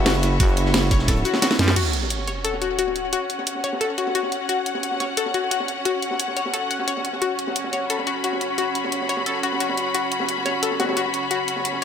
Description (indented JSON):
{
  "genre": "dark technical drum and bass",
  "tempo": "176 BPM",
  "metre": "4/4",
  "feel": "straight",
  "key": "unclear",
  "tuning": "A4 = 441 Hz",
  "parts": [
    { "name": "dark analog pad", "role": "sustained chords", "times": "0.0-11.8 s", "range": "C#4 to B5", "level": "-33 LUFS", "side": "right 2 dB", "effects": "chorus, sidechain pumping" },
    { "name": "growling FM bass", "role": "bass", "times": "0.0-1.8 s", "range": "F#1 to F#2", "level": "-21 LUFS", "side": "right 1 dB", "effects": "none" },
    { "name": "rich studio string section", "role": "texture", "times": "0.0-11.8 s", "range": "C#4 to B5", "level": "-25 LUFS", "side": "equal", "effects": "sidechain pumping" },
    { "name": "analog pluck", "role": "arpeggios", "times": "0.1-11.8 s", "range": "F#4 to F#5", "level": "-26 LUFS", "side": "left 6 dB", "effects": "chorus, sidechain pumping, ping-pong delay" },
    { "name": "crunchy breakbeat drum kit", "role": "drums", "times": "0.1-11.8 s", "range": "hi-hat, snare drum", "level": "-33 LUFS", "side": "right 2 dB", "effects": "high-pass filter on hats, low-pass filter on hats, small room ambience, high-pass filter on snare, low-pass filter on snare, high-pass filter on room, low-pass filter on room" },
    { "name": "drum and bass drum kit", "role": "drums", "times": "0.1-11.8 s", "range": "cabasa, crash cymbal, hi-hat, ride cymbal, snare drum", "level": "-25 LUFS", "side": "right 1 dB", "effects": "small room ambience" },
    { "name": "electronic kick drum", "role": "drums", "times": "0.4-1.1 s", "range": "none", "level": "-20 LUFS", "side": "right 1 dB", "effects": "small room ambience" },
    { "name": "zap and sub drop", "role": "sound effects", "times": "1.7-3.1 s", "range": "none", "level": "-28 LUFS", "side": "right 1 dB", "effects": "none" }
  ],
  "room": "light reverb",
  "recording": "none",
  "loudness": "-20 LUFS",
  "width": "side -8 dB against mid",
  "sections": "0.0-1.8 A section; 1.8-11.8 B section",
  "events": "drop 0.0-1.8; drum fill 1.4-1.8; band accent 1.7; impact 1.8-3.1",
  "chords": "0.0 F#5"
}